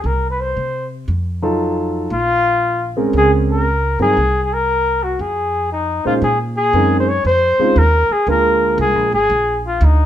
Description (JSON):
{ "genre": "jazz", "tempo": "117 BPM", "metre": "4/4", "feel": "swing 66% on 8ths", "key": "Bb minor", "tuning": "A4 = 439 Hz", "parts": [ { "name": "warm flugelhorn", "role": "melody", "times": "0.0-10.1 s", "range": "Eb4 to Db5", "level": "-16 LUFS", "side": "left 1 dB", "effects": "none" }, { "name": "upright bass", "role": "bass", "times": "0.0-10.1 s", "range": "Ab1 to C3", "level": "-19 LUFS", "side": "equal", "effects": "none" }, { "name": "dark baby grand piano", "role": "accompaniment", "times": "1.4-9.1 s", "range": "Bb2 to C5", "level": "-18 LUFS", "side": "right 2 dB", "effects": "none" } ], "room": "moderate large studio reverb, RT60 0.9 s", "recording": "minimal, uncompressed stereo recording", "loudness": "-14 LUFS", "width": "side -11 dB against mid", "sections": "0.0-6.2 A section; 6.2-10.1 B section", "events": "none", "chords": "0.0 Bbsus2/C; 1.1 F7b9; 2.1 Bbm9; 4.2 Abadd9/C; 5.2 Fm7; 6.2 Bbm11; 8.3 Bb7", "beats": "| 0.05 0.56 1.08 1.59 | 2.10 2.62 3.13 3.65 | 4.16 4.67 5.19 5.70 | 6.22 6.73 7.24 7.76 | 8.27 8.78 9.30 9.81" }